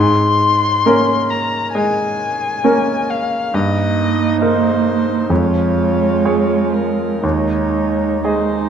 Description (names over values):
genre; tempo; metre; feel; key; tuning
classical, slow romantic movement for piano quartet; 59-69 BPM; 4/4; rubato; unclear; A4 = 441 Hz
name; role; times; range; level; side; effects
muted violin; melody; 0.0-8.7 s; Bb4 to C6; -19 LUFS; left 5 dB; none
bright grand piano; accompaniment; 0.0-8.7 s; Eb2 to Eb5; -17 LUFS; equal; none
muted cello; second line; 0.9-8.7 s; Ab3 to Bb3; -19 LUFS; right 7 dB; none
muted viola; accompaniment; 0.9-8.7 s; Db4 to F4; -23 LUFS; right 7 dB; none
room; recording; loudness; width
wet recital hall reverb, RT60 1.5 s; dark, warm production; -14 LUFS; side -8 dB against mid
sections
0.0-8.7 A section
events
none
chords
0.0 Bbm7/Ab; 3.5 Eb/G; 5.3 Db/F; 7.2 Ab/Eb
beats
0.85 1.74 2.64 | 3.54 4.42 5.30 6.25 | 7.23 8.24